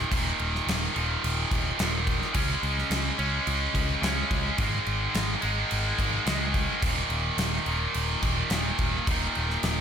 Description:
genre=hard rock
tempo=107 BPM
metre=4/4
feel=straight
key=unclear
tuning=A4 = 438 Hz
part: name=heavy high-gain guitar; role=riff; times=0.0-9.8 s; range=Eb2 to Db4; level=-27 LUFS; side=right 1 dB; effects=distortion
part: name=picked electric bass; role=bass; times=0.0-9.8 s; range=Eb1 to Db2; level=-30 LUFS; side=equal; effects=none
part: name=gated 80s drum kit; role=drums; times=0.1-9.8 s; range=crash cymbal, kick drum, snare drum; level=-30 LUFS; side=equal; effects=none
room=small room ambience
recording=none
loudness=-24 LUFS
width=side -8 dB against mid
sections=0.0-9.8 A section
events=none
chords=0.0 Eb5; 2.4 Db5; 4.6 Ab5; 6.8 Eb5

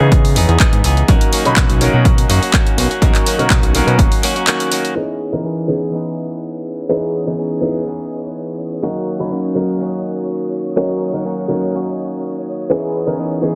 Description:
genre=filtered disco house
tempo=124 BPM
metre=4/4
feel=straight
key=C# dorian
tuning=A4 = 440 Hz
part: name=warm grand piano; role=accompaniment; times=0.0-13.6 s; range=E3 to B5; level=-22 LUFS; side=equal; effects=phaser, sidechain pumping, low-pass filter
part: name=direct-recorded clean electric guitar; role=riff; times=0.0-13.6 s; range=D#3 to G#4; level=-24 LUFS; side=equal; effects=spring reverb, sidechain pumping, low-pass filter
part: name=fat analog bass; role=bass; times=0.0-4.1 s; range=F#1 to C#3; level=-18 LUFS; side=equal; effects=sidechain pumping, low-pass filter
part: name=electronic kick drum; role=drums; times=0.1-4.1 s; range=none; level=-16 LUFS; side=equal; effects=none
part: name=house drum kit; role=drums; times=0.1-4.9 s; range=handclaps, hi-hat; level=-22 LUFS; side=equal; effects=sidechain pumping on hats
part: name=string machine, full ensemble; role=sustained chords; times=5.0-13.6 s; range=C#5 to D#6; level=-35 LUFS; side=equal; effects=none
room=light reverb, digital ambience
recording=none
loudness=-16 LUFS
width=mono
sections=0.0-5.0 A section; 5.0-13.6 B section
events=filter sweep 0.0-5.0, 5.0-13.6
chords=0.0 C#m9; 1.1 Bmaj9; 5.0 C#m9; 8.8 Bmaj9 (rootless); 12.7 C#m9

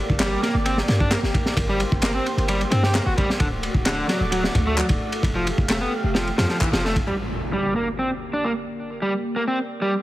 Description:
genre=breakbeat, breaks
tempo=131 BPM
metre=4/4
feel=straight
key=G minor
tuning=A4 = 440 Hz
part: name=lush unison pad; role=sustained chords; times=0.0-10.0 s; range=A3 to F5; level=-29 LUFS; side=right 1 dB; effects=chorus, sidechain pumping
part: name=warm 808-style bass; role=bass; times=0.1-7.0 s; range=D1 to G2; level=-25 LUFS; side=equal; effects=none
part: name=crunchy breakbeat drum kit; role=drums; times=0.1-7.1 s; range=kick drum, ride cymbal, snare drum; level=-23 LUFS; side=equal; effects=none
part: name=crunchy overdriven guitar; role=riff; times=0.2-9.9 s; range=D3 to G4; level=-25 LUFS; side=equal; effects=vintage 12-bit sampler grit, low-pass filter, digital delay
part: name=electronic handclaps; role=drums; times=0.2-6.7 s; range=none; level=-31 LUFS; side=left 1 dB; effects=none
part: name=impact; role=sound effects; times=7.1-8.9 s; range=none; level=-32 LUFS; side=equal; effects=none
room=light reverb, small room ambience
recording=heavily compressed radio sound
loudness=-20 LUFS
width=side -16 dB against mid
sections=0.0-7.1 A section; 7.1-10.0 B section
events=band accent 6.6; impact 7.1-8.9; filter sweep on analog synth pad 7.1-10.0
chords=0.0 Gm; 3.4 D; 5.2 Fadd9; 7.1 Gm

